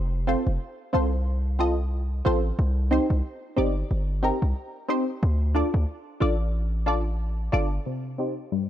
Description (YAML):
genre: dancehall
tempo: 91 BPM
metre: 4/4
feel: swing 56% on 16ths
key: C dorian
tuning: A4 = 440 Hz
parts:
  - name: hard-hitting 808-style bass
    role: bass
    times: 0.0-7.8 s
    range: F1 to D2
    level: -24 LUFS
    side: equal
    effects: none
  - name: punchy chord stab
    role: accompaniment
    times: 0.3-8.7 s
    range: G2 to Eb5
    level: -27 LUFS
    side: equal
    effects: chorus, phaser, low-pass filter
room: little or no reverb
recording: none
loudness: -23 LUFS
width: side -11 dB against mid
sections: 0.0-7.9 A section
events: none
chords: 0.0 F; 2.6 Cm; 5.2 Dm; 7.9 Cm